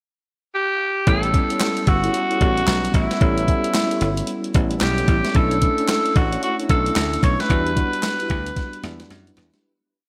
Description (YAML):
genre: R&B, new jack swing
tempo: 112 BPM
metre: 4/4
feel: swing 62% on 16ths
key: unclear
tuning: A4 = 440 Hz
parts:
  - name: raspy tenor saxophone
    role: melody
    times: 0.5-9.1 s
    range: E4 to C#5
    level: -25 LUFS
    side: equal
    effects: slapback echo, delay
  - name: bright tine electric piano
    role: accompaniment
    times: 1.1-9.7 s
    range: G3 to F#4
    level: -28 LUFS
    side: equal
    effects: slapback echo
  - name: mellow synth brass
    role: stabs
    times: 1.1-9.7 s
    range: D4 to C#5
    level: -32 LUFS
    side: equal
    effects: chorus, slapback echo
  - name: dry thumbed slap bass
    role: bass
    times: 1.1-9.5 s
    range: G1 to F#2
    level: -26 LUFS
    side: equal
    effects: none
  - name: crisp 8-bit digital drum machine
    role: drums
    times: 1.1-9.6 s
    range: handclaps, hi-hat, kick drum, snare drum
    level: -24 LUFS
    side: equal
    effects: none
room: moderate lush hall reverb, RT60 2.5 s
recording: big arena sound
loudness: -20 LUFS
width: mono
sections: 0.0-1.1 pickup bar; 1.1-9.6 verse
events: fade-out 7.5-9.6; drum fill 8.6-9.6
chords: 0.0 N.C.; 1.1 A7; 5.4 Bm11; 7.5 Em7